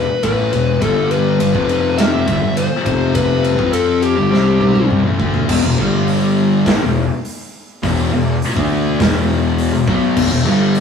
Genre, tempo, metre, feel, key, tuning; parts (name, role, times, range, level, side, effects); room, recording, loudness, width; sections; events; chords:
stoner and doom metal; 103 BPM; 4/4; straight; E phrygian; A4 = 442 Hz
fuzz lead guitar; melody; 0.0-4.9 s; G4 to E5; -18 LUFS; left 3 dB; distortion
thick fuzz guitar; riff; 0.0-10.8 s; E2 to F4; -17 LUFS; left 6 dB; distortion
thick fuzz guitar; riff; 0.0-10.8 s; E2 to F4; -21 LUFS; right 5 dB; distortion
fuzz picked electric bass; bass; 0.0-10.8 s; E1 to F2; -21 LUFS; equal; overdrive
big rock drum kit; drums; 0.2-10.8 s; crash cymbal, hi-hat, kick drum, ride cymbal, snare drum, toms; -20 LUFS; equal
moderate studio reverb, RT60 0.6 s; rough rehearsal-room recording, warm saturation; -13 LUFS; side -6 dB against mid
0.0-5.5 A section; 5.5-10.8 B section
drum fill 4.3-5.5
0.0 E5; 0.8 G5; 1.5 F5; 2.3 G5; 2.9 F5; 4.2 G5; 5.5 E5; 5.8 G5; 6.7 E5